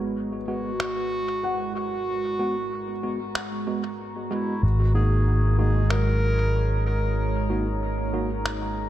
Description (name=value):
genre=ambient dub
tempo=94 BPM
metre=4/4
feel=swing 60% on 16ths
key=G# minor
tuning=A4 = 440 Hz
part: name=deep dark ambient pad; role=sustained chords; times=0.0-8.9 s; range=G#3 to A#5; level=-32 LUFS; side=right 2 dB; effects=chorus, built-in reverb
part: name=felt-muted upright piano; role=arpeggios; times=0.0-8.9 s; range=F#3 to F#5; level=-38 LUFS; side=left 4 dB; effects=dub echo
part: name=tine electric piano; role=stabs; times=0.0-8.3 s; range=G#3 to F#4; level=-32 LUFS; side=right 2 dB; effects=dub echo
part: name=fingered electric bass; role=bass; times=0.0-8.9 s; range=G#1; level=-22 LUFS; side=equal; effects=none
part: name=warm clarinet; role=melody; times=0.5-7.5 s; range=E4 to A#4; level=-30 LUFS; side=right 1 dB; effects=vintage 12-bit sampler grit, dub echo
part: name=electronic finger snaps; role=drums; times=0.8-8.6 s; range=none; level=-32 LUFS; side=equal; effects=small room ambience, dub echo
room=light reverb, studio reverb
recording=dark, warm production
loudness=-22 LUFS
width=side -12 dB against mid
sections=0.0-8.9 A section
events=filter sweep on felt piano 0.0-8.9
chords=0.0 G#m7; 4.6 F#6/G#